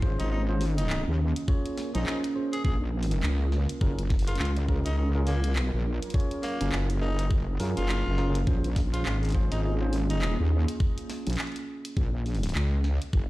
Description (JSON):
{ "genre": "glitch hop", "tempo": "103 BPM", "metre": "4/4", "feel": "swing 60% on 16ths", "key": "Bb minor", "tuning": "A4 = 445 Hz", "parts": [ { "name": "dark analog pad", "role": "sustained chords", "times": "0.0-13.1 s", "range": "Gb3 to Bb4", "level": "-37 LUFS", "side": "right 3 dB", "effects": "lush chorus, sidechain pumping" }, { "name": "tine electric piano", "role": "stabs", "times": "0.0-10.0 s", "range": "Db4 to Db5", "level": "-36 LUFS", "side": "right 1 dB", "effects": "sidechain pumping, dub echo" }, { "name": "wobble bass", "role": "bass", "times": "0.0-13.3 s", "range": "Gb1 to Gb2", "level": "-26 LUFS", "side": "equal", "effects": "chorus, overdrive" }, { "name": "electronic kick drum", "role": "drums", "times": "0.0-13.3 s", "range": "none", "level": "-26 LUFS", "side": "equal", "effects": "none" }, { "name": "growling tenor saxophone", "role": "melody", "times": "0.2-10.3 s", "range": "Bb3 to Ab4", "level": "-37 LUFS", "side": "equal", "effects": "dub echo" }, { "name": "drum and bass drum kit", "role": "drums", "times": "0.2-13.1 s", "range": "handclaps, hi-hat, snare drum", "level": "-37 LUFS", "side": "equal", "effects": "none" } ], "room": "light reverb", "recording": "played on a big sound system in a bare room, stone room reverb", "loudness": "-25 LUFS", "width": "side -18 dB against mid", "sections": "0.0-13.3 A section", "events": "none", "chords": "0.0 Bbm7; 3.8 Gbmaj7; 8.5 Bbm7", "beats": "0.32 0.90 | 1.48 2.06 2.65 3.23 | 3.81 4.39 4.98 5.56 | 6.14 6.72 7.31 7.89 | 8.47 9.05 9.64 10.22 | 10.80 11.38 11.97 12.55 | 13.13" }